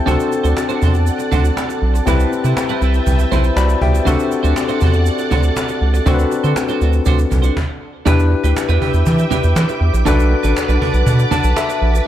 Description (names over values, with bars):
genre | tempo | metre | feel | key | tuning
1980s-style pop | 120 BPM | 4/4 | straight | E minor | A4 = 440 Hz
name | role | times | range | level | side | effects
barky tine electric piano | accompaniment | 0.0-12.1 s | C4 to B5 | -20 LUFS | left 6 dB | overdrive
soft string machine | sustained chords | 0.0-12.1 s | A4 to D6 | -24 LUFS | right 2 dB | ensemble chorus
twelve-string electric guitar | riff | 0.1-12.0 s | C4 to C5 | -24 LUFS | right 7 dB | wide subtle chorus, ping-pong delay
round analog bass | bass | 0.1-12.0 s | A1 to E3 | -14 LUFS | right 1 dB | none
cajon | drums | 0.1-11.9 s | none | -23 LUFS | equal | none
tube shaker | percussion | 0.1-12.1 s | none | -36 LUFS | right 12 dB | none
room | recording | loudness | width
light reverb | dark, warm production | -13 LUFS | side -12 dB against mid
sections
0.0-8.1 A section; 8.1-12.1 B section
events
tine electric piano fill 3.3-4.1, 11.1-12.1; stop 7.6-8.1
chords
0.1 D7; 2.1 Cmaj7; 4.1 D7; 8.1 Em7; 10.1 Bm7